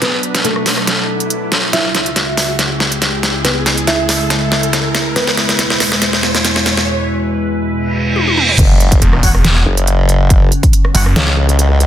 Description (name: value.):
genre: heavy wobble dubstep.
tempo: 140 BPM.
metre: 4/4.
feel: swing 54% on 16ths, half-time.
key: F# minor.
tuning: A4 = 440 Hz.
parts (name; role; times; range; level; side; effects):
felt-muted upright piano; melody; 0.0-5.9 s; A3 to E5; -20 LUFS; equal; dub echo.
evolving wavetable pad; sustained chords; 0.0-11.9 s; C#2 to B4; -19 LUFS; equal; chorus, built-in reverb, sidechain pumping.
dubstep drum kit; drums; 0.0-11.9 s; crash cymbal, hi-hat, rim click, snare drum, toms; -15 LUFS; equal; soft clipping on snare, high-pass filter on snare, high-pass filter on hats, high-pass filter on toms, high-pass filter on cymbals.
riser and reverse cymbal; sound effects; 0.0-8.6 s; none; -21 LUFS; right 2 dB; none.
formant-sweep wobble bass; bass; 8.6-11.9 s; F#1 to C#2; -12 LUFS; equal; chorus, overdrive.
electronic kick drum; drums; 8.6-10.7 s; none; -10 LUFS; equal; none.
snarling distorted saw bass; bass; 9.0-11.1 s; E1 to F#1; -12 LUFS; equal; distortion, overdrive.
warm brass ensemble; stabs; 9.2-11.0 s; F#4 to F#5; -26 LUFS; left 2 dB; dub echo.
room: light reverb, digital ambience.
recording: dense, heavily limited modern master.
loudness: -11 LUFS.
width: side -11 dB against mid.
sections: 0.0-8.6 A section; 8.6-11.9 B section.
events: build-up 0.0-8.6; drum fill 0.0-6.9, 8.2-8.6; riser 0.0-6.9; reverse cymbal 7.9-8.6; drop 8.6-11.9.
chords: 0.0 Bm; 1.7 C#m; 5.2 E; 8.6 F#5.